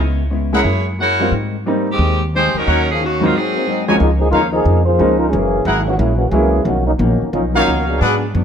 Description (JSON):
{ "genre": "jazz, big band swing", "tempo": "180 BPM", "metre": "4/4", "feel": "swing 64% on 8ths", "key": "Ab major, Db major from 4.0 s", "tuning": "A4 = 440 Hz", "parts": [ { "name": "hollow-body jazz guitar", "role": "accompaniment", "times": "0.0-8.4 s", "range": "Ab2 to Ab4", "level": "-24 LUFS", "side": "left 3 dB", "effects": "none" }, { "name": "upright bass", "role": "bass", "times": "0.0-8.4 s", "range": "Gb1 to Ab2", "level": "-18 LUFS", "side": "equal", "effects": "none" }, { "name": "clear saxophone section", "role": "melody", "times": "0.5-3.9 s", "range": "Eb3 to Gb5", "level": "-18 LUFS", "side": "equal", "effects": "none" }, { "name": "clear baby grand piano", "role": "accompaniment", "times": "0.5-7.7 s", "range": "Db2 to F4", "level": "-19 LUFS", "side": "equal", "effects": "none" }, { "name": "clear trumpet section", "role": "stabs", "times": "0.5-0.6, 2.7-8.2 s", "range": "D4 to Ab5", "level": "-20 LUFS", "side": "equal", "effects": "none" }, { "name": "mellow trombone section", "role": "second line", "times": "3.5-8.2 s", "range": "Eb3 to C5", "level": "-18 LUFS", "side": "equal", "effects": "none" } ], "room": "moderate echo chamber reverb, RT60 1.6 s", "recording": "none", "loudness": "-13 LUFS", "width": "side -8 dB against mid", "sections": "0.0-4.0 A section; 4.0-8.4 B section", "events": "trombone section solo 4.0-8.4", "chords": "0.0 Dbm7; 0.7 Gb9; 1.3 Abmaj7; 2.7 Ebm7; 3.3 Ab9; 4.0 Db69; 5.3 Gb9; 6.7 Cbmaj9#11" }